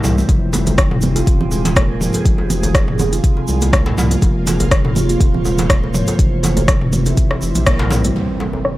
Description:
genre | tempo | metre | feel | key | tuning
afro house | 122 BPM | 4/4 | swing 54% on 16ths | F minor | A4 = 439 Hz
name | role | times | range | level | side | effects
ethereal airy pad | sustained chords | 0.0-8.8 s | C3 to Db5 | -25 LUFS | right 2 dB | ensemble chorus, built-in reverb, phaser, sidechain pumping
handpan | arpeggios | 0.0-8.0 s | C3 to F4 | -20 LUFS | equal | sidechain pumping, analog delay
round analog bass | bass | 0.0-8.1 s | Eb1 to C2 | -20 LUFS | equal | sidechain pumping
deep house drum kit | drums | 0.0-8.8 s | hi-hat, rim click, toms | -20 LUFS | equal | low-pass filter on snare, studio ambience, low-pass filter on toms, low-pass filter on hats
djembe | percussion | 0.0-8.6 s | none | -27 LUFS | left 2 dB | none
tube shaker | percussion | 0.0-8.1 s | none | -30 LUFS | right 2 dB | none
congas | percussion | 0.2-8.1 s | none | -23 LUFS | right 3 dB | none
electronic kick drum | drums | 0.3-7.8 s | none | -15 LUFS | equal | studio ambience
impact | sound effects | 8.2-8.8 s | none | -25 LUFS | equal | none
room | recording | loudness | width
little or no reverb | dry, gritty hardware recording | -13 LUFS | side -16 dB against mid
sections
0.0-8.2 A section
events
band accent 7.7; impact 8.2-8.8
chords
0.3 Fm7; 2.3 Ebsus4/F; 4.2 Bbm/F; 6.2 C7/F; 8.2 Fm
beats
| 0.29 0.78 1.27 1.76 | 2.26 2.75 3.24 3.73 | 4.22 4.71 5.21 5.70 | 6.19 6.68 7.17 7.67 | 8.16 8.65

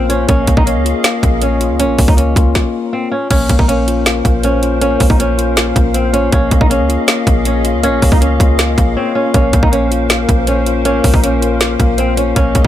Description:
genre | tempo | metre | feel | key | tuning
hip hop, trap | 159 BPM | 4/4 | half-time | Bb minor | A4 = 440 Hz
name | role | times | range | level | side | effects
flamenco guitar | melody | 0.0-12.7 s | C4 to Eb4 | -18 LUFS | right 1 dB | low-pass filter
mellow tine electric piano | accompaniment | 0.0-12.7 s | Bb3 to Db5 | -18 LUFS | left 7 dB | low-pass filter
hollow soft pad | sustained chords | 0.0-12.7 s | Db4 to F5 | -22 LUFS | right 1 dB | ensemble chorus
clean 808-style bass | bass | 0.0-12.7 s | Bb1 to Db2 | -16 LUFS | equal | none
trap drum kit | drums | 0.1-12.7 s | crash cymbal, hi-hat, kick drum, snare drum | -13 LUFS | equal | none
room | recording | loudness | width
little or no reverb | none | -10 LUFS | side -12 dB against mid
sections
0.0-3.3 A section; 3.3-12.7 B section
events
stop 2.6-3.3; break 9.0-9.3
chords
0.3 Dbadd9/Bb; 3.3 Bbmadd9; 6.3 Dbadd9/Bb; 9.3 Bbmadd9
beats
| 0.29 0.67 1.04 1.42 | 1.80 2.17 2.55 2.93 | 3.31 3.68 4.06 4.44 | 4.82 5.19 5.57 5.95 | 6.33 6.70 7.08 7.46 | 7.83 8.21 8.59 8.97 | 9.34 9.72 10.10 10.48 | 10.85 11.23 11.61 11.99 | 12.36

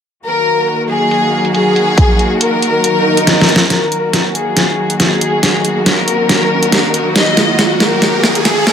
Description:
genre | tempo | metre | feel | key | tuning
heavy wobble dubstep | 139 BPM | 4/4 | swing 54% on 16ths, half-time | Eb minor | A4 = 440 Hz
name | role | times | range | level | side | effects
rich chamber violin section | melody | 0.2-8.7 s | Ab4 to Eb5 | -15 LUFS | left 2 dB | low-pass filter, dub echo
muted studio string section | sustained chords | 0.2-8.7 s | Eb3 to Gb4 | -17 LUFS | equal | sidechain pumping, low-pass filter
dubstep drum kit | drums | 0.3-8.7 s | hi-hat, snare drum | -13 LUFS | equal | overdrive, low-pass filter on hats, low-pass filter on snare, low-pass filter on room
electronic kick drum | drums | 2.0-2.1 s | none | -10 LUFS | equal | overdrive
swell and riser | sound effects | 2.9-8.7 s | none | -20 LUFS | right 3 dB | none
room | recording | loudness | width
moderate plate reverb, RT60 1.4 s | high-pass filter | -10 LUFS | side -8 dB against mid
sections
0.2-3.7 A section; 3.7-8.7 B section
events
swell 2.9-3.7; drum fill 3.3-3.7, 3.7-8.7; build-up 3.7-8.7; riser 3.7-8.7; filter sweep on violin section 3.7-8.7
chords
0.2 Ebm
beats
| 0.25 0.68 1.11 1.54 | 1.98 2.41 2.84 3.27 | 3.70 4.13 4.57 5.00 | 5.43 5.86 6.29 6.72 | 7.16 7.59 8.02 8.45

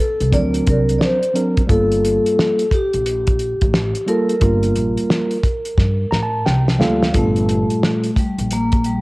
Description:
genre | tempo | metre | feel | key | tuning
hip hop, jazz-hop | 88 BPM | 4/4 | swing 64% on 16ths | G minor | A4 = 436 Hz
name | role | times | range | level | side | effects
vibraphone with soft mallets | melody | 0.0-9.0 s | G3 to D5 | -20 LUFS | left 1 dB | cassette tape, analog delay
upright bass | bass | 0.2-9.0 s | G1 to A2 | -20 LUFS | equal | tube saturation
cloth-damped thuddy drum kit | drums | 0.2-9.0 s | hi-hat, kick drum, snare drum | -19 LUFS | equal | cassette tape
mellow tine electric piano | accompaniment | 0.3-8.1 s | Bb2 to Bb5 | -19 LUFS | right 1 dB | medium stereo tremolo
room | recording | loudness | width
light reverb, small room ambience | home recording on cassette | -15 LUFS | side -22 dB against mid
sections
0.0-7.1 A section; 7.1-9.0 A section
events
drum fill 5.8-7.1; tine electric piano fill 5.8-7.1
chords
0.3 Daug7; 1.7 Gm9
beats
0.33 1.01 | 1.69 2.37 3.06 3.74 | 4.42 5.10 5.78 6.46 | 7.15 7.83 8.51

